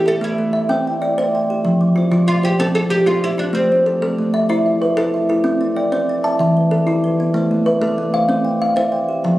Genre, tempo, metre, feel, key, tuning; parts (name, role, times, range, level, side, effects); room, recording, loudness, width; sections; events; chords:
southern african traditional, mbira-style interlocking cycle; 126 BPM (dotted quarters); 12/8; straight; C major; A4 = 440 Hz
oud; melody; 0.0-5.1 s; C4 to A4; -20 LUFS; right 1 dB
kalimba; arpeggios; 0.0-9.4 s; E3 to A5; -17 LUFS; left 1 dB
kalimba; arpeggios; 0.0-9.4 s; E3 to A5; -21 LUFS; right 2 dB
moderate recital hall reverb, RT60 1.7 s; recorded on a phone in the room, club reverb, compression; -15 LUFS; side -16 dB against mid
0.0-5.4 A section; 5.4-9.4 B section
0.0 A5; 0.7 C; 1.6 F; 3.5 Am; 5.4 C; 6.4 Em; 7.3 Am; 8.3 C